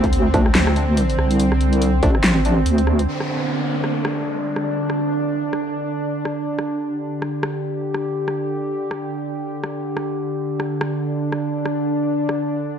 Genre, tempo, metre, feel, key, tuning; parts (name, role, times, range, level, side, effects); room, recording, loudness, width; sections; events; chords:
deep dubstep; 142 BPM; 4/4; swing 57% on 16ths, half-time; A4 = 440 Hz
bowed-like drone; sustained chords; 0.0-12.8 s; D3 to G4; -22 LUFS; right 1 dB; built-in reverb
deep soft wobble bass; bass; 0.0-3.1 s; A1 to D2; -17 LUFS; equal; chorus, tube saturation
dubstep drum kit; drums; 0.0-12.4 s; handclaps, hi-hat, rim click, snare drum; -24 LUFS; equal
electronic kick drum; drums; 0.0-2.1 s; -20 LUFS; equal; distortion
percussive organ stab; stabs; 0.3-2.1 s; F3 to D4; -27 LUFS; right 1 dB; chorus, dub echo
downlifter; sound effects; 3.1-6.5 s; -29 LUFS; right 2 dB
moderate echo chamber reverb, RT60 1.8 s, digital ambience; dry, gritty hardware recording; -18 LUFS; side -8 dB against mid
0.0-3.1 A section; 3.1-12.8 B section
drop 0.0-3.1; kick drops out 2.2-3.1
0.0 D5; 3.1 Dsus4